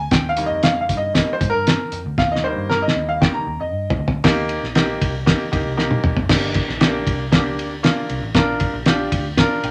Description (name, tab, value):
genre	uptempo 1960s-style soul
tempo	117 BPM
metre	4/4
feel	straight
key	unclear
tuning	A4 = 439 Hz
part	clear baby grand piano	accompaniment	0.0-9.7 s	Eb3 to Bb5	-24 LUFS	equal	none
part	vintage muted picked electric bass	bass	0.0-9.7 s	Gb1 to Ab2	-30 LUFS	equal	none
part	cloth-damped thuddy drum kit	drums	0.1-9.7 s	crash cymbal, hi-hat, kick drum, ride cymbal, snare drum, toms	-21 LUFS	equal	none
room	wet small room reverb, RT60 0.6 s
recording	none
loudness	-19 LUFS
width	mono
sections	0.0-4.2 A section; 4.2-6.3 B section; 6.3-9.7 C section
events	grand piano solo 0.0-4.2; drum fill 2.2-4.2, 5.8-6.3; grand piano fill 9.4-9.7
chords	0.1 Eb; 6.3 Gm; 8.4 Bb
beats	| 0.12 0.63 1.15 1.66 | 2.18 2.70 3.21 3.73 | 4.24 4.76 5.27 5.78 | 6.30 6.81 7.33 7.84 | 8.35 8.86 9.38